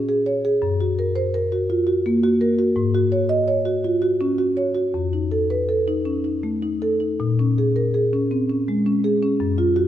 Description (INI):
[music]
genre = classical, contemporary piece for solo marimba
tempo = 82 BPM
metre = 3/4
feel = rubato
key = Bb minor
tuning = A4 = 440 Hz
[part]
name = marimba with soft mallets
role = solo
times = 0.0-9.9 s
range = F2 to Eb5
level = -18 LUFS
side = equal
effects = none
[sound]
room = wet scoring stage reverb, RT60 1.6 s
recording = none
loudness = -18 LUFS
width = side -11 dB against mid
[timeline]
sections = 0.0-9.9 A section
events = none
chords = 0.0 Bbm7; 0.6 Gb; 2.8 Ab7sus4; 4.9 F7; 7.2 Bbm7